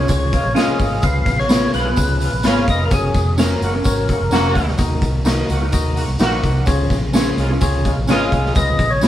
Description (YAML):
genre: uptempo 1960s-style soul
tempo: 128 BPM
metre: 4/4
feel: straight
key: Db major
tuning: A4 = 440 Hz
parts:
  - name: percussive tonewheel organ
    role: melody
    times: 0.0-4.5, 8.1-9.1 s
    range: Ab4 to F5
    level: -22 LUFS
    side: left 1 dB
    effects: overdrive, slow rotary speaker
  - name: mellow electric guitar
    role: stabs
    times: 0.0-9.1 s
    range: Cb4 to Bb4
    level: -22 LUFS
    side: equal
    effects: none
  - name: vintage muted fingered electric bass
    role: bass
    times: 0.0-9.1 s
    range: F1 to Eb2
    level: -20 LUFS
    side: equal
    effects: none
  - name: barky tine electric piano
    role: accompaniment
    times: 0.1-9.1 s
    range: Db3 to Eb5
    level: -25 LUFS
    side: left 3 dB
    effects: none
  - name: raw garage drum kit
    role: drums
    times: 0.1-9.1 s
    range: hi-hat, kick drum, snare drum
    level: -19 LUFS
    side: equal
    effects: none
  - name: tambourine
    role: percussion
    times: 0.1-9.1 s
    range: none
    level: -34 LUFS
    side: right 2 dB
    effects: none
  - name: clear horn section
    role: second line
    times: 0.3-8.5 s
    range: Db3 to Gb4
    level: -23 LUFS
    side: equal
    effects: none
room: wet studio reverb, RT60 0.8 s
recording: band playing live in one room, vinyl crackle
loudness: -15 LUFS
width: side -12 dB against mid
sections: 0.0-9.1 A section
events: none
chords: 0.0 Db; 1.0 Db7; 2.9 Gb; 4.8 Ebm; 6.7 Db; 8.6 Db7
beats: 0.10 0.56 | 1.03 1.50 1.97 2.44 | 2.91 3.38 3.85 4.32 | 4.79 5.26 5.73 6.20 | 6.67 7.14 7.61 8.08 | 8.55 9.03